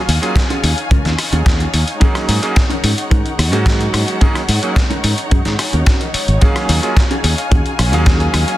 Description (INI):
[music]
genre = nu-disco, nu disco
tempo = 109 BPM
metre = 4/4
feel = straight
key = Eb minor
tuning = A4 = 444 Hz
[part]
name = muted chamber string section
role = sustained chords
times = 0.0-8.6 s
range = Ab3 to Ab5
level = -23 LUFS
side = left 1 dB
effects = sidechain pumping
[part]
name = mellow electric guitar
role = riff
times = 0.1-8.3 s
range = Db4 to Ab5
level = -25 LUFS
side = equal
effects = ensemble chorus, slapback echo
[part]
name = fingered electric bass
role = bass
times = 0.1-8.4 s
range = Ab1 to Ab2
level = -16 LUFS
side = equal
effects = none
[part]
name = dusty soul sampler-style drum kit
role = drums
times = 0.1-8.6 s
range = hi-hat, rim click, snare drum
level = -20 LUFS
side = left 1 dB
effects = studio reverb
[part]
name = bright electric grand piano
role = accompaniment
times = 0.2-8.6 s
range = Gb3 to F5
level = -21 LUFS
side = right 2 dB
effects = sidechain pumping, slapback echo
[part]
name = kick drum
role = drums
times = 0.4-8.2 s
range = none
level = -14 LUFS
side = equal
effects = studio reverb
[sound]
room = light reverb, small room reverb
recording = dense, heavily limited modern master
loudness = -12 LUFS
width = side -15 dB against mid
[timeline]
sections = 0.0-8.6 A section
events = clean electric guitar fill 5.3-6.4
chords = 0.0 Ebm11; 2.0 Ab7sus4; 6.4 Ebm11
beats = 0.36 0.91 1.46 | 2.01 2.56 3.11 3.66 | 4.21 4.76 5.31 5.86 | 6.41 6.96 7.51 8.07